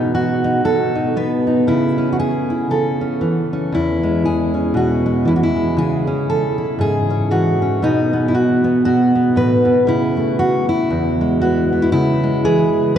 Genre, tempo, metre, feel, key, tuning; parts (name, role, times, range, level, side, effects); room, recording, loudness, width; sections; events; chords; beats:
folk, solo fingerstyle acoustic guitar; 117 BPM; 4/4; swing 58% on 8ths; E major; A4 = 440 Hz
fingerpicked steel-string acoustic guitar; solo; 0.0-13.0 s; E2 to B4; -14 LUFS; equal; slapback echo
wet cathedral reverb, RT60 7.2 s; in a vast, echoing space, nothing above 10.6 kHz; -14 LUFS; side -9 dB against mid
0.0-11.9 A section; 11.9-13.0 B section
0.0 B; 1.7 A/C#; 3.7 E6; 5.8 C#m; 7.8 B; 9.9 A/C#; 10.9 E; 11.9 C#m7
0.14 0.65 1.16 | 1.68 2.19 2.70 3.21 | 3.73 4.24 4.75 5.27 | 5.78 6.29 6.80 7.32 | 7.83 8.34 8.86 9.37 | 9.88 10.39 10.91 11.42 | 11.93 12.45 12.96